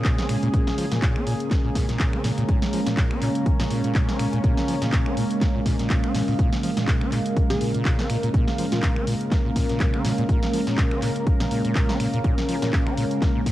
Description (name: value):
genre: acid house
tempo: 123 BPM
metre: 4/4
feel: swing 56% on 16ths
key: Bb minor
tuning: A4 = 440 Hz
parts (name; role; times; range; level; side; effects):
- lush unison pad; sustained chords; 0.0-13.5 s; Db3 to Bb4; -28 LUFS; equal; chorus, sidechain pumping, cassette tape
- deep acid bass; riff; 0.0-13.5 s; Bb2 to Db4; -28 LUFS; equal; overdrive, wide subtle chorus, sidechain pumping, cassette tape
- electronic kick drum; drums; 0.0-13.5 s; none; -22 LUFS; equal; cassette tape
- punchy analog drum machine; drums; 0.0-13.5 s; finger snaps, handclaps, hi-hat, snare drum; -31 LUFS; equal; cassette tape
- deep dark ambient pad; texture; 0.0-13.5 s; Ab3 to Eb6; -28 LUFS; right 2 dB; chorus, built-in reverb, sidechain pumping, cassette tape
- plucky unison lead; melody; 7.5-8.9 s; F4 to Ab4; -32 LUFS; left 1 dB; analog chorus, cassette tape, analog delay
room: light reverb, digital ambience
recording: home recording on cassette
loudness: -20 LUFS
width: side -14 dB against mid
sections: 0.0-13.5 A section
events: none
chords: 0.0 Bbm7